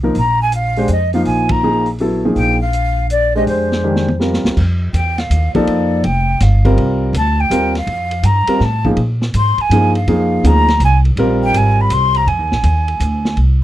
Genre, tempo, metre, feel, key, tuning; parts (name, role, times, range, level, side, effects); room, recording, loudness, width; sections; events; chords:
modal jazz; 163 BPM; 3/4; swing 66% on 8ths; A4 = 441 Hz
clear concert grand piano; accompaniment; 0.0-12.2 s; Eb3 to C5; -16 LUFS; equal
upright bass; bass; 0.0-13.6 s; F1 to Bb2; -15 LUFS; equal
vintage drum kit; drums; 0.1-13.5 s; crash cymbal, hi-hat, kick drum, ride cymbal, snare drum, toms; -24 LUFS; equal
breathy mellow jazz flute; melody; 0.2-13.4 s; C5 to C6; -17 LUFS; equal
little or no reverb; dry, close 1970s-style studio recording; -12 LUFS; side -13 dB against mid
0.0-4.6 A section; 4.6-13.6 B section
band accent 1.4; drum fill 3.8-4.6; flute solo 4.6-13.6
0.2 Bb13sus4; 4.6 C7sus4; 9.0 Bb13sus4